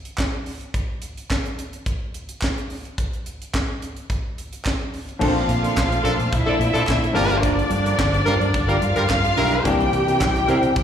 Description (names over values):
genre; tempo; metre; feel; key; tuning
disco; 108 BPM; 4/4; straight; unclear; A4 = 440 Hz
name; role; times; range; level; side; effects
tight funk drum kit; drums; 0.1-10.8 s; crash cymbal, handclaps, hi-hat, kick drum, snare drum; -26 LUFS; equal; none
group handclap; percussion; 0.2-10.3 s; none; -35 LUFS; right 3 dB; none
rich studio string section; second line; 5.2-10.8 s; D4 to G5; -22 LUFS; left 1 dB; slapback echo
mellow electric guitar; accompaniment; 5.2-10.8 s; Bb3 to C5; -27 LUFS; right 8 dB; wide subtle chorus, slapback echo
warm baby grand piano; accompaniment; 5.2-10.8 s; E3 to D4; -26 LUFS; left 5 dB; slapback echo
mellow French horn section; sustained chords; 5.2-10.8 s; Bb2 to E4; -30 LUFS; right 1 dB; none
vintage muted fingered electric bass; bass; 5.2-10.8 s; G1 to C3; -23 LUFS; equal; none
warm horn section; stabs; 6.0-10.6 s; F3 to Bb4; -24 LUFS; left 1 dB; slapback echo
room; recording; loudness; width
light reverb, small room ambience; live gig heard through the venue's PA, recital hall reverb; -19 LUFS; side -8 dB against mid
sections
0.0-5.2 A section; 5.2-10.8 B section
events
none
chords
0.0 N.C.; 5.2 Bbmaj7; 7.2 Gm7; 9.7 C7